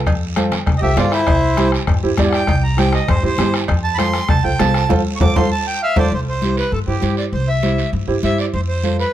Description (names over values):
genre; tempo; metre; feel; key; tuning
latin, cumbia; 198 BPM; 4/4; straight; C major; A4 = 440 Hz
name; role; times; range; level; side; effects
upright bass; bass; 0.1-9.0 s; C2 to G2; -20 LUFS; equal; none
bombo; percussion; 0.1-6.0 s; none; -20 LUFS; left 2 dB; none
congas; percussion; 0.1-9.0 s; none; -23 LUFS; left 3 dB; none
cowbell and timbales; percussion; 0.1-6.0 s; none; -27 LUFS; right 4 dB; none
guiro; percussion; 0.1-9.1 s; none; -30 LUFS; right 8 dB; none
warm upright piano; accompaniment; 0.4-9.0 s; E4 to D5; -22 LUFS; right 4 dB; none
accordion; melody; 0.8-9.1 s; E4 to D6; -21 LUFS; right 1 dB; none
room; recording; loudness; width
light reverb; none; -14 LUFS; side -12 dB against mid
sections
0.0-6.1 A section; 6.1-9.1 B section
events
accordion solo 0.0-6.1; band accent 4.9-6.1; drum fill 5.2-6.1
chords
0.0 F; 1.3 C; 3.7 F; 6.1 C; 8.5 F